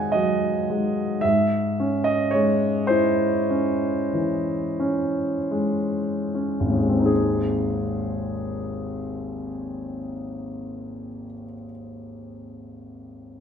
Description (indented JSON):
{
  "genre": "classical, romantic nocturne for solo piano",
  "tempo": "23-38 BPM (dotted quarters)",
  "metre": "9/8",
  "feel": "rubato",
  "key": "Ab major",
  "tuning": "A4 = 441 Hz",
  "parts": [
    { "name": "warm concert grand piano", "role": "solo", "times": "0.0-13.4 s", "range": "Ab1 to Ab5", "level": "-22 LUFS", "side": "equal", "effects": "none" }
  ],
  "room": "wet recital hall reverb, RT60 1.4 s",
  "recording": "none",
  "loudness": "-21 LUFS",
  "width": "side -7 dB against mid",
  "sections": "0.0-7.1 A section; 7.1-13.3 B section",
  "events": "slowing down 0.0-7.1",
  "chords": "0.0 Ab5; 1.2 Dbm/Ab; 7.1 Ab"
}